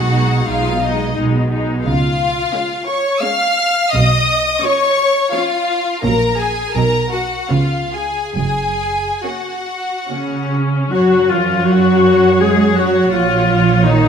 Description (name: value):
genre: classical, slow romantic movement for string orchestra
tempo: 67-89 BPM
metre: 3/4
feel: rubato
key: F# major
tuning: A4 = 440 Hz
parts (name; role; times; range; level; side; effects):
- clear studio violin section; melody; 0.0-14.1 s; D#5 to E#6; -21 LUFS; left 4 dB; none
- rich chamber violin section; second line; 0.0-14.1 s; D#4 to E#5; -19 LUFS; equal; none
- rich chamber viola section; accompaniment; 0.0-14.1 s; E#3 to G#4; -17 LUFS; left 3 dB; none
- rich chamber double bass section; bass; 0.0-14.1 s; F#1 to F#2; -19 LUFS; right 3 dB; none
- warm chamber cello section; bass; 0.0-14.1 s; F#2 to G#3; -19 LUFS; right 3 dB; none
room: moderate scoring stage reverb, RT60 1.6 s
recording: none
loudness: -13 LUFS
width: side -7 dB against mid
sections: 0.0-10.9 A section; 10.9-14.1 A section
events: none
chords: 0.0 G#m/B; 1.9 C#; 3.9 C#7/B; 6.0 F#/A#; 6.7 Bmaj7; 7.5 C#7; 8.4 F#; 10.9 F#5; 13.1 F#/A#